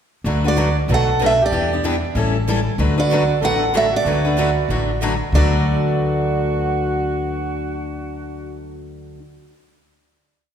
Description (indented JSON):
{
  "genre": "acoustic string swing (jazz manouche)",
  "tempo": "188 BPM",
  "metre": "4/4",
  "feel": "swing 60% on 8ths",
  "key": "D major",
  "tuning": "A4 = 442 Hz",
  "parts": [
    { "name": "upright bass", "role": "bass", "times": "0.2-9.1 s", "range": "A1 to E2", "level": "-21 LUFS", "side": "left 1 dB", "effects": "none" },
    { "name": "picked steel-string acoustic guitar", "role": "accompaniment", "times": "0.3-9.2 s", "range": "B2 to B4", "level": "-24 LUFS", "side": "left 4 dB", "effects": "none" },
    { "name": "picked steel-string acoustic guitar", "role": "accompaniment", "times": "0.3-9.2 s", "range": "B2 to B4", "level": "-28 LUFS", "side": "right 4 dB", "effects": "none" },
    { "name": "picked steel-string acoustic guitar", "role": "melody", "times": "0.5-9.1 s", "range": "D5 to F#5", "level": "-21 LUFS", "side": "right 3 dB", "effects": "none" },
    { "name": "mellow soprano saxophone", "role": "second line", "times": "0.5-8.6 s", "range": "F#4 to A4", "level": "-25 LUFS", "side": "right 3 dB", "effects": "none" }
  ],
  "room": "wet scoring stage reverb, RT60 1.5 s",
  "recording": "recorded in a church or concert hall",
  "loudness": "-16 LUFS",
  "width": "side -8 dB against mid",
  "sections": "0.2-5.3 A section; 5.3-7.9 final chord",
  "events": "none",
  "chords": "0.2 D6; 0.9 Bm7; 1.5 Em7; 2.2 A7; 2.8 D6"
}